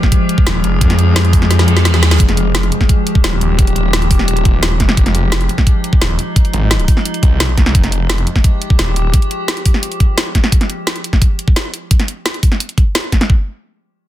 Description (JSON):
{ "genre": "dark technical drum and bass", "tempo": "173 BPM", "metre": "4/4", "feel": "straight", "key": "F minor", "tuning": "A4 = 439 Hz", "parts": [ { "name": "metallic inharmonic drone", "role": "sustained chords", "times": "0.0-10.5 s", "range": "F3 to Ab4", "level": "-20 LUFS", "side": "left 1 dB", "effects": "chorus, built-in reverb, sidechain pumping" }, { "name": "drum and bass drum kit", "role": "drums", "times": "0.0-13.3 s", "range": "hi-hat, snare drum", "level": "-17 LUFS", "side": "equal", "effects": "none" }, { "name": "electronic kick drum", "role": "drums", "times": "0.0-13.4 s", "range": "none", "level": "-12 LUFS", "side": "equal", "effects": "none" }, { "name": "snarling distorted saw bass", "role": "bass", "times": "0.5-9.1 s", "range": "Eb1 to F2", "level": "-14 LUFS", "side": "equal", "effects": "distortion, overdrive" }, { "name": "reverse cymbal", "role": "sound effects", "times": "1.6-2.2 s", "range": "none", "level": "-23 LUFS", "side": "right 6 dB", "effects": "none" } ], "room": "little or no reverb", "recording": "dense, heavily limited modern master", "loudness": "-11 LUFS", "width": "side -13 dB against mid", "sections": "0.0-13.3 A section", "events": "drop 0.0-13.3; kick drops out 1.5-2.2; drum fill 1.5-2.2; reverse cymbal 1.6-2.2", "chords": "0.0 Fmadd9; 13.3 N.C." }